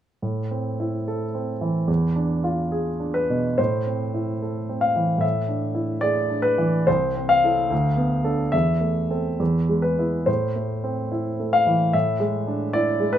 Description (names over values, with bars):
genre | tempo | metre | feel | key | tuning
classical, romantic character piece for solo piano | 67-76 BPM | 2/4 | rubato | A minor | A4 = 440 Hz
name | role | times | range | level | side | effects
warm grand piano | solo | 0.2-13.2 s | C2 to F5 | -20 LUFS | equal | none
room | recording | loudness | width
moderate studio reverb, RT60 0.5 s | minimal, uncompressed stereo recording | -20 LUFS | side -10 dB against mid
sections
0.2-3.6 A section; 3.6-13.2 B section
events
none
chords
0.2 Am; 1.9 E7b9; 3.6 Am; 5.2 E7/A; 6.9 Am/C; 7.7 Bm7b5/D; 8.5 Am/E; 9.4 E; 10.3 Am; 11.9 E7/A